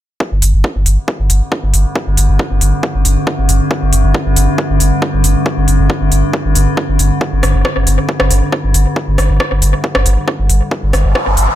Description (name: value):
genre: driving peak-time techno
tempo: 137 BPM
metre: 4/4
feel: straight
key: unclear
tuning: A4 = 440 Hz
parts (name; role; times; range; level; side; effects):
- metallic inharmonic drone; drone; 1.3-11.6 s; G2 to D3; -18 LUFS; equal; chorus, built-in reverb, sidechain pumping
- electronic kick drum; drums; 0.2-11.2 s; none; -19 LUFS; equal; overdrive, high-pass filter on kick, studio reverb
- warm sub bass; bass; 0.3-11.5 s; G1; -12 LUFS; equal; overdrive, sidechain pumping, low-pass filter
- techno drum kit; drums; 0.4-11.5 s; hi-hat, rim click; -16 LUFS; equal; overdrive, sidechain pumping on hats, studio reverb, analog delay
- riser; sound effects; 10.9-11.6 s; none; -17 LUFS; equal; none
room: light reverb, digital ambience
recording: echo-heavy mix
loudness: -11 LUFS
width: side -13 dB against mid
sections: 0.2-11.6 A section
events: riser 10.9-11.6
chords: 0.2 G5